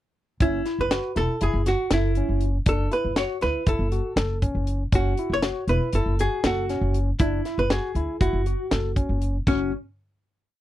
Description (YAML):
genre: progressive instrumental, band music in an uneven meter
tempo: 238 BPM (eighths)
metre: 9/8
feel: straight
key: F# minor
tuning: A4 = 443 Hz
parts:
  - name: archtop guitar, miked and amplified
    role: melody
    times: 0.4-9.7 s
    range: C#4 to C#5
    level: -26 LUFS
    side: right 1 dB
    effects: none
  - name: barky tine electric piano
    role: arpeggios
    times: 0.4-9.7 s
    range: C#4 to A4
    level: -31 LUFS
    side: left 3 dB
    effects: medium stereo tremolo
  - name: upright bass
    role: bass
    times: 0.4-9.7 s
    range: E1 to D2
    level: -25 LUFS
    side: equal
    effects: none
  - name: tight funk drum kit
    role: drums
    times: 0.4-9.6 s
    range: crash cymbal, hi-hat, kick drum, snare drum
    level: -24 LUFS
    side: equal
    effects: none
room: little or no reverb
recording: dry, close 1970s-style studio recording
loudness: -21 LUFS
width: side -13 dB against mid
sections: 0.4-9.5 A section; 9.5-10.6 final chord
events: none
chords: 0.4 F#5; 1.4 F#m7; 2.7 Bm11/F#; 3.7 F#m7; 4.9 F#5; 5.9 F#m7; 7.2 E9/F#; 8.2 F#m7; 9.5 F#5